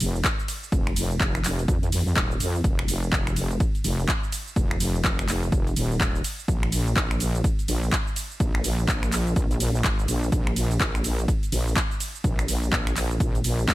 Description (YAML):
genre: bass house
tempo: 125 BPM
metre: 4/4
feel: swing 61% on 16ths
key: unclear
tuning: A4 = 439 Hz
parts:
  - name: wobble bass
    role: bass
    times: 0.0-13.7 s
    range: Eb1 to F2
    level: -25 LUFS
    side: equal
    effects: chorus, tube saturation, sidechain pumping
  - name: house drum kit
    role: drums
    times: 0.0-13.7 s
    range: cabasa, finger snaps, handclaps, hi-hat, ride cymbal, snare drum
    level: -28 LUFS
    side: equal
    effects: none
  - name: electronic kick drum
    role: drums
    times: 0.2-13.7 s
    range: none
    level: -26 LUFS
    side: equal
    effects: none
room: little or no reverb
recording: none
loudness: -22 LUFS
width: side -16 dB against mid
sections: 0.0-13.7 A section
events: none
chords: none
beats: 0.24 | 0.72 1.20 1.68 2.16 | 2.64 3.12 3.60 4.08 | 4.56 5.04 5.52 6.00 | 6.48 6.96 7.44 7.92 | 8.40 8.88 9.36 9.84 | 10.32 10.80 11.28 11.76 | 12.24 12.72 13.20 13.68